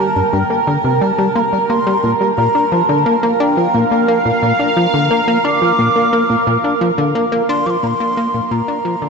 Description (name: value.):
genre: ambient, sequencer-driven space music.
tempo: 88 BPM.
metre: 4/4.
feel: straight.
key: unclear.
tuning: A4 = 440 Hz.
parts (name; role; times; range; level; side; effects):
mellow hollow wooden flute; melody; 0.0-9.1 s; F5 to D6; -18 LUFS; equal; shimmer reverb, ping-pong delay.
sweeping resonant pad; sustained chords; 0.0-9.1 s; Bb4 to G5; -18 LUFS; right 3 dB; chorus, shimmer reverb.
plucky analog bass; riff; 0.0-9.1 s; G2 to D4; -16 LUFS; left 2 dB; shimmer reverb, ping-pong delay.
pulsing gated texture; texture; 0.0-9.1 s; Bb4; -30 LUFS; right 5 dB; chorus, built-in reverb, shimmer reverb.
room: wet huge ambient reverb, RT60 8.3 s.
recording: nothing above 7.9 kHz.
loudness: -12 LUFS.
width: side -4 dB against mid.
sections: 0.0-9.1 A section.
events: fade-in on synth texture 0.0-9.1; fade-out 6.0-9.1.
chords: 0.0 Gm; 2.4 Bb.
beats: 0.33 1.01 1.69 | 2.38 3.06 3.74 4.42 | 5.10 5.78 6.47 7.15 | 7.83 8.51.